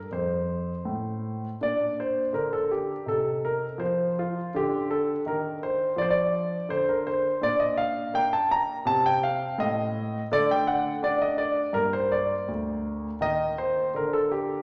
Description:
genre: classical, baroque-style suite movement for grand piano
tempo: 83 BPM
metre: 4/4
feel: rubato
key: G minor from 7.4 s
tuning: A4 = 439 Hz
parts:
  - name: warm concert grand piano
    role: solo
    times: 0.0-14.6 s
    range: D2 to Bb5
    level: -27 LUFS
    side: equal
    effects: none
room: wet recital hall reverb, RT60 1.7 s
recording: none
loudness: -27 LUFS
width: mono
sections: 0.0-14.6 A section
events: none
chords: 0.0 F7; 1.6 Bb; 3.1 F5/C; 4.5 Dm7; 7.4 Bbmaj7; 8.9 Adim/C; 10.3 D5; 11.7 Gm; 13.2 Eb5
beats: 0.14 0.88 | 1.62 2.35 3.07 3.80 | 4.53 5.26 5.98 6.70 | 7.42 8.14 8.87 9.59 | 10.31 11.03 11.75 12.48 | 13.20 13.93

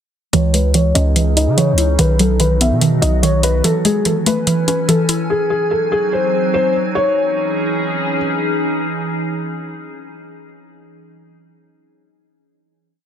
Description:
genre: hip hop, trap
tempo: 145 BPM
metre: 4/4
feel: half-time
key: C# minor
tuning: A4 = 441 Hz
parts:
  - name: felt-muted upright piano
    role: melody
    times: 0.3-8.2 s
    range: G#4 to E5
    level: -18 LUFS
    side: left 1 dB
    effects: low-pass filter, digital delay
  - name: mallet-like synth pluck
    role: accompaniment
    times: 0.3-5.3 s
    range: D#3 to D#5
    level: -17 LUFS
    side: right 1 dB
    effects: chorus, phaser, low-pass filter
  - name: glassy FM pad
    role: sustained chords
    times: 0.9-10.1 s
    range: D#3 to G#5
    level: -21 LUFS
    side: equal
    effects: ensemble chorus, built-in reverb, low-pass filter
  - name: distorted 808-style bass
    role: bass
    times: 0.3-3.6 s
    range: B1 to C#3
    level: -15 LUFS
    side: equal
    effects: distortion
  - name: electronic hi-hat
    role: drums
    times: 0.3-5.2 s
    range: none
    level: -19 LUFS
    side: left 1 dB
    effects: none
room: light reverb, digital ambience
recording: dense, heavily limited modern master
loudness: -14 LUFS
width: side -9 dB against mid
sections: 0.3-7.0 breakdown; 7.0-10.3 final chord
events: filter sweep 0.3-7.0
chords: 0.3 C#madd9; 2.0 B; 3.6 Amaj7; 5.3 G#7; 7.0 C#madd9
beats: | 0.33 0.75 1.16 1.57 | 1.99 2.40 2.81 3.23 | 3.64 4.06 4.47 4.88 | 5.30 5.71 6.12 6.54 | 6.95 7.37 7.78 8.19 | 8.61 9.02 9.44 9.85

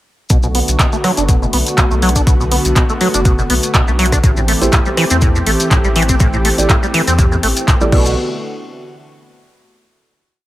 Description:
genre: acid house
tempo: 122 BPM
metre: 4/4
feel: swing 54% on 16ths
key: B phrygian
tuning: A4 = 440 Hz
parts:
  - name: warm analog pad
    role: sustained chords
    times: 0.3-8.2 s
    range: D3 to G4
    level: -20 LUFS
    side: equal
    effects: chorus, sidechain pumping
  - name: liquid acid bass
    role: riff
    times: 0.3-8.2 s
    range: A2 to D4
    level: -18 LUFS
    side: equal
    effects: tube saturation, wide subtle chorus, sidechain pumping, digital delay
  - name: saturated sub bass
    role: bass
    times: 0.3-8.2 s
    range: F#1 to E2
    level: -17 LUFS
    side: equal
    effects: tube saturation, sidechain pumping
  - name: electronic kick drum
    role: drums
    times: 0.3-8.0 s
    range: none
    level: -13 LUFS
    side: equal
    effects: none
  - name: punchy analog drum machine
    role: drums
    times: 0.3-8.0 s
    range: crash cymbal, handclaps, hi-hat, rim click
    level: -19 LUFS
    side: equal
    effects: none
  - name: maracas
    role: percussion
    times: 0.3-8.1 s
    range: none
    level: -23 LUFS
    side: left 2 dB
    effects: none
  - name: dark baby grand piano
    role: stabs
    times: 4.6-8.1 s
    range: E4 to D5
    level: -20 LUFS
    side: right 3 dB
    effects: digital delay
room: light reverb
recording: none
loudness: -11 LUFS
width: side -15 dB against mid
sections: 0.3-8.2 groove; 8.2-10.1 final hit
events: none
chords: 0.3 Bm7; 4.2 Am7; 7.9 Bm7; 8.2 N.C.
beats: | 0.30 0.79 1.29 1.78 | 2.27 2.76 3.25 3.75 | 4.24 4.73 5.22 5.71 | 6.20 6.70 7.19 7.68

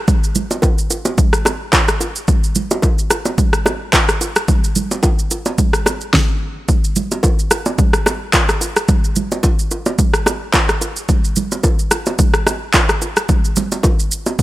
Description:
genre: amapiano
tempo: 109 BPM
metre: 4/4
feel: swing 55% on 16ths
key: none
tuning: none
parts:
  - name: deep house drum kit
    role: drums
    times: 0.1-14.4 s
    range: handclaps, kick drum, rim click, shaker, snare drum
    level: -14 LUFS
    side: equal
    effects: overdrive
  - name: congas and bongos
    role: percussion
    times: 0.1-14.4 s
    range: none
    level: -21 LUFS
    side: right 2 dB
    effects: none
room: little or no reverb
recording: none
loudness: -14 LUFS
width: side -16 dB against mid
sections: 0.0-6.7 A section; 6.7-14.4 A section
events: drop 0.0-6.7, 6.7-14.4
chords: none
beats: | 0.08 0.63 1.18 1.73 | 2.28 2.83 3.38 3.93 | 4.48 5.03 5.58 6.13 | 6.68 7.24 7.79 8.34 | 8.89 9.44 9.99 10.54 | 11.09 11.64 12.19 12.74 | 13.29 13.84 14.39

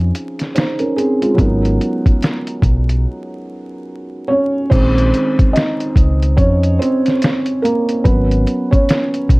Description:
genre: lo-fi hip hop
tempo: 72 BPM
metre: 4/4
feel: swing 60% on 16ths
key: Bb phrygian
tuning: A4 = 440 Hz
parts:
  - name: felt-muted upright piano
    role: accompaniment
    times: 0.0-9.4 s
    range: Eb3 to Eb5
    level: -17 LUFS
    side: right 1 dB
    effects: low-pass filter
  - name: deep dub fingered electric bass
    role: bass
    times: 0.0-9.4 s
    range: Ab1 to F2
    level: -15 LUFS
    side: equal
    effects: none
  - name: lo-fi sampler-style drum kit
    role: drums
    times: 0.1-9.4 s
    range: crash cymbal, hi-hat, kick drum, snare drum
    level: -15 LUFS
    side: equal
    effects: none
room: light reverb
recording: dark, warm production, vinyl crackle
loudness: -13 LUFS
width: side -24 dB against mid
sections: 0.0-4.7 A section; 4.7-9.4 A section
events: break 3.0-4.7; felt piano solo 4.7-9.4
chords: 0.0 Bbm11; 1.4 Abm11; 4.7 Bbm11; 8.1 Abm11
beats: 0.55 | 1.38 2.22 3.05 3.88 | 4.72 5.55 6.38 7.22 | 8.05 8.88

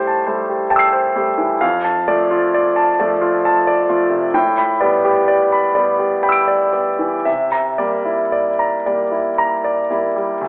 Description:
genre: classical, impressionist solo piano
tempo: 56-70 BPM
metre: 3/4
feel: rubato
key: F major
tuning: A4 = 441 Hz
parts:
  - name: warm concert grand piano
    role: solo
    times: 0.0-10.5 s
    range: D2 to D7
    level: -14 LUFS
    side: equal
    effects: none
room: wet scoring stage reverb, RT60 1.6 s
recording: telephone sound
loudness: -14 LUFS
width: side -32 dB against mid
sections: 0.0-10.4 A section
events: none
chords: 0.0 Am7; 1.6 F6; 4.3 A9sus4; 7.3 C9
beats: 0.72 | 1.63 2.54 3.43 | 4.34 5.28 6.23 | 7.26 8.34 9.39 | 10.42

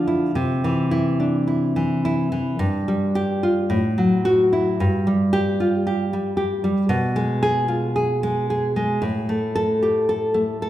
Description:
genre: romantic piece for solo classical guitar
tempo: 55 BPM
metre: 2/4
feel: uneven beats, rubato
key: unclear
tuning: A4 = 440 Hz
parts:
  - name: nylon-string guitar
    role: solo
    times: 0.0-10.7 s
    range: G2 to A4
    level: -18 LUFS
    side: equal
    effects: none
room: wet recital hall reverb, RT60 1.7 s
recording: recorded in a church or concert hall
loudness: -19 LUFS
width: side -13 dB against mid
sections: 0.0-10.7 A section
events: none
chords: 0.4 C; 2.6 Fsus2/G; 3.7 F#m7/A; 4.8 Fsus2/G; 6.9 Fdim/Cb; 9.0 Gsus2/A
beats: | 0.37 1.47 | 2.59 3.71 | 4.81 5.86 | 6.90 7.97 | 9.03 10.09

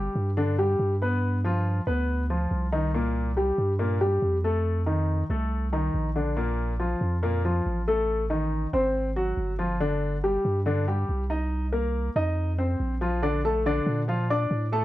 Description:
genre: Afro-Cuban jazz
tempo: 140 BPM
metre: 4/4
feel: straight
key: G minor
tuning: A4 = 440 Hz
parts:
  - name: warm baby grand piano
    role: accompaniment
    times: 0.0-14.8 s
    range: Bb2 to D6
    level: -26 LUFS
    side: left 1 dB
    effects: none
  - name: punchy sub bass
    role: bass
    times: 0.0-14.8 s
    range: G1 to Bb2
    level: -27 LUFS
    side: equal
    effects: none
room: light reverb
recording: none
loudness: -24 LUFS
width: side -15 dB against mid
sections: 0.0-13.2 A section; 13.2-14.8 B section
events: none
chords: 0.0 G5; 1.2 G7; 2.9 C5; 4.7 F6; 6.4 Bb5; 8.1 Adim; 8.9 Ab7; 9.8 G5; 11.5 Cm7; 12.4 F5; 13.2 Bbmaj7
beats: 0.37 0.80 | 1.23 1.66 2.09 2.52 | 2.94 3.37 3.80 4.23 | 4.66 5.09 5.52 5.95 | 6.37 6.80 7.23 7.66 | 8.09 8.52 8.95 9.37 | 9.80 10.23 10.66 11.09 | 11.52 11.94 12.37 12.80 | 13.23 13.66 14.08 14.51

